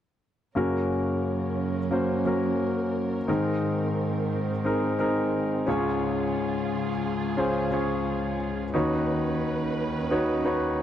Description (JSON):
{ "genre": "pop", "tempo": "88 BPM", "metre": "4/4", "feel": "swing 56% on 16ths", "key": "unclear", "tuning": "A4 = 439 Hz", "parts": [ { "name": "warm concert grand piano", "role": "accompaniment", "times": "0.6-10.8 s", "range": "Db2 to Db5", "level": "-25 LUFS", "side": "left 2 dB", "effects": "none" }, { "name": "muted studio string section", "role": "sustained chords", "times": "0.6-10.8 s", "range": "Db2 to Cb5", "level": "-32 LUFS", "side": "right 6 dB", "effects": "none" } ], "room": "studio reverb", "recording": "dry, close 1970s-style studio recording", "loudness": "-24 LUFS", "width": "side -10 dB against mid", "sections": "0.6-10.8 A section", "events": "none", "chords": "0.6 Gb; 3.3 Abadd9; 5.7 Db; 8.7 Cbadd9/Eb" }